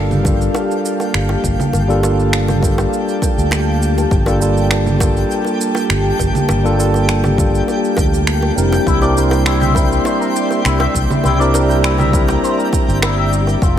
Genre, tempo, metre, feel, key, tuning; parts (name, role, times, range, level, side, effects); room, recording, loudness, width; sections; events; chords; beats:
sunset chillout; 101 BPM; 4/4; straight; G minor; A4 = 441 Hz
tine electric piano; accompaniment; 0.0-13.8 s; G3 to Bb4; -19 LUFS; moving between left 4 dB and right 4 dB; auto-pan, tape echo
airy breathy pad; sustained chords; 0.0-13.8 s; Bb3 to D6; -21 LUFS; right 1 dB; chorus
fingered electric bass; bass; 0.0-13.8 s; F1 to D2; -17 LUFS; equal; tube saturation
twinkling granular texture; texture; 0.0-13.8 s; G4 to G5; -26 LUFS; left 1 dB; built-in reverb
electronic congas, shaker and finger snaps; drums; 0.1-13.7 s; -22 LUFS; right 2 dB; overdrive, small room reverb
bongos; percussion; 0.2-13.6 s; -26 LUFS; right 1 dB
electronic kick drum; drums; 0.3-13.7 s; -18 LUFS; equal; overdrive, small room reverb
electric guitar with an envelope filter; arpeggios; 8.9-13.8 s; E4 to E5; -21 LUFS; left 3 dB; tape echo
light reverb; -13 LUFS; side -10 dB against mid
0.0-13.8 A section
0.0 Gm9; 8.9 C9
0.55 1.14 | 1.74 2.33 2.93 3.52 | 4.11 4.71 5.30 5.90 | 6.49 7.08 7.68 8.27 | 8.87 9.46 10.05 10.65 | 11.24 11.84 12.43 13.03 | 13.62